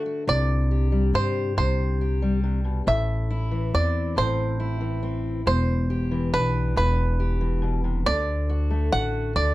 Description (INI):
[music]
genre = folk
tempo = 46 BPM (dotted quarters)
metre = 6/8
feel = straight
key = unclear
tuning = A4 = 441 Hz
[part]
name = bluegrass banjo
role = melody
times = 0.0-9.5 s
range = B4 to F#5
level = -26 LUFS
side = right 2 dB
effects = none
[part]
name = fingerpicked steel-string acoustic guitar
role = accompaniment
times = 0.0-9.5 s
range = E2 to G4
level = -29 LUFS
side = left 3 dB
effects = none
[part]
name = upright bass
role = bass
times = 0.3-9.5 s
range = E1 to G2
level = -24 LUFS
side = equal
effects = none
[sound]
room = light reverb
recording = none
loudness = -21 LUFS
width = side -17 dB against mid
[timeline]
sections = 0.3-9.5 A section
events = none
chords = 0.3 Csus2; 2.9 Am; 5.5 Em7; 8.1 D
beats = | 0.28 1.57 | 2.87 4.17 | 5.46 6.76 | 8.06 9.35